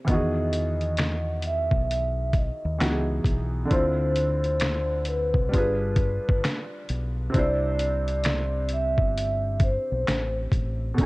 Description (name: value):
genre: lo-fi hip hop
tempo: 66 BPM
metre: 4/4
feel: swing 64% on 16ths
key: unclear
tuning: A4 = 440 Hz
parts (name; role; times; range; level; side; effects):
- felt-muted upright piano; accompaniment; 0.0-11.1 s; B2 to C5; -30 LUFS; right 1 dB; cassette tape, low-pass filter
- vibraphone with soft mallets; melody; 0.1-11.1 s; A4 to E5; -28 LUFS; equal; low-pass filter
- deep dub fingered electric bass; bass; 0.1-11.1 s; G1 to E2; -28 LUFS; equal; none
- trip hop sampler-style drum kit; drums; 0.1-11.1 s; finger snaps, hi-hat, kick drum, snare drum; -24 LUFS; equal; none
room: small room ambience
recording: worn, warbling old tape, cassette tape, warbly pitch drift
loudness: -23 LUFS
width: side -21 dB against mid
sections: 0.1-11.1 A section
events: none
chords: 0.1 Emaj7; 3.7 Dm7; 5.5 G7b9; 7.3 C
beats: | 0.07 0.98 1.89 2.80 | 3.71 4.62 5.53 6.43 | 7.34 8.25 9.16 10.07 | 10.98